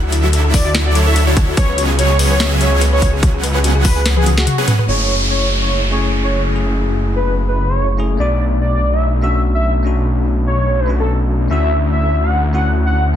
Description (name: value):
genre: future bass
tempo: 145 BPM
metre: 4/4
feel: swing 54% on 16ths, half-time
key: F# minor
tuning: A4 = 440 Hz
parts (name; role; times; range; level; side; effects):
- thumb-piano-like synth pluck; arpeggios; 0.0-4.8 s; E4 to B4; -25 LUFS; left 5 dB; chorus, sidechain pumping, ping-pong delay
- supersaw chords; riff; 0.0-4.7 s; F#3 to F#5; -20 LUFS; right 1 dB; sidechain pumping, low-pass filter, ping-pong delay
- wide detuned saw bass; bass; 0.0-13.2 s; F#1 to D2; -15 LUFS; equal; chorus, sidechain pumping
- trap drum kit; drums; 0.1-5.0 s; crash cymbal, hi-hat, snare drum, toms; -19 LUFS; left 1 dB; overdrive, low-pass filter on hats, small room ambience, low-pass filter on snare, low-pass filter on toms, low-pass filter on cymbals
- warm velvety synth lead; melody; 0.5-13.0 s; F#4 to F#5; -21 LUFS; equal; chorus, sidechain pumping, ping-pong delay
- electronic kick drum; drums; 0.5-3.9 s; none; -14 LUFS; equal; overdrive, small room ambience
- bell-like tine electric piano; accompaniment; 4.9-13.2 s; A3 to G#4; -22 LUFS; left 3 dB; auto-pan, sidechain pumping, ping-pong delay
- downlifter; sound effects; 4.9-8.2 s; none; -22 LUFS; equal; none
room: light reverb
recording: dense, heavily limited modern master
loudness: -13 LUFS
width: side -10 dB against mid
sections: 0.0-4.9 A section; 4.9-13.2 B section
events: drop 0.0-4.9; drum fill 4.1-4.9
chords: 0.0 Dmaj9; 1.6 C#7sus4; 4.9 F#m9; 8.2 Bm7; 11.5 Dmaj9